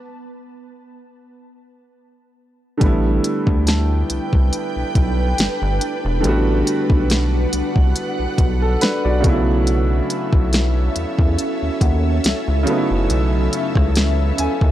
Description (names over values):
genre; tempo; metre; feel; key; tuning
contemporary R&B; 70 BPM; 4/4; swing 54% on 16ths; unclear; A4 = 442 Hz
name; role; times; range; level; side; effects
celesta; texture; 0.0-5.3, 11.8-13.5 s; F#5 to D6; -38 LUFS; left 2 dB; none
warm baby grand piano; accompaniment; 2.8-14.7 s; C#3 to G#5; -22 LUFS; right 1 dB; none
ethereal airy pad; sustained chords; 3.8-14.7 s; C#4 to G5; -25 LUFS; equal; ensemble chorus, built-in reverb
rubbery square bass; bass; 2.8-14.7 s; E1 to E2; -19 LUFS; equal; none
smooth R&B drum kit; drums; 2.8-14.7 s; hi-hat, kick drum, rim click, snare drum; -18 LUFS; equal; vintage 12-bit sampler grit
room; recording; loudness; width
digital ambience; dry, gritty hardware recording, transformer saturation; -16 LUFS; side -13 dB against mid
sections
0.0-2.8 A section; 2.8-14.7 B section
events
stop 0.0-2.8; grand piano fill 14.0-14.7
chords
0.0 N.C.; 2.8 A9sus4; 9.2 B9sus4